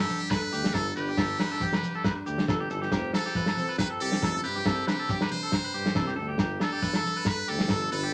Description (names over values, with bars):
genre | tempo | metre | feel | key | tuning
highlife guitar band | 138 BPM | 4/4 | swing 54% on 16ths | G mixolydian | A4 = 439 Hz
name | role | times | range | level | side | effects
trumpet with metal mute | melody | 0.0-8.1 s | G4 to C5 | -34 LUFS | equal | none
flamenco guitar | accompaniment | 0.0-8.1 s | G2 to A4 | -40 LUFS | equal | none
electric guitar at the edge of break-up | arpeggios | 0.0-8.1 s | G4 to B4 | -35 LUFS | equal | none
congas | percussion | 0.1-8.0 s | none | -39 LUFS | equal | none
shekere | percussion | 0.1-8.0 s | none | -42 LUFS | equal | none
warm soul drum kit | drums | 0.3-7.8 s | kick drum, snare drum | -31 LUFS | equal | none
agogo bells | percussion | 0.3-7.8 s | none | -43 LUFS | equal | none
breathy tuba | bass | 0.5-8.1 s | F1 to G2 | -37 LUFS | equal | none
room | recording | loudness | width
wet studio reverb, RT60 0.6 s | none | -28 LUFS | mono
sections
0.0-8.1 A section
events
none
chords
0.0 Gadd9; 2.9 Fadd9; 4.7 Csus2; 6.4 Gadd9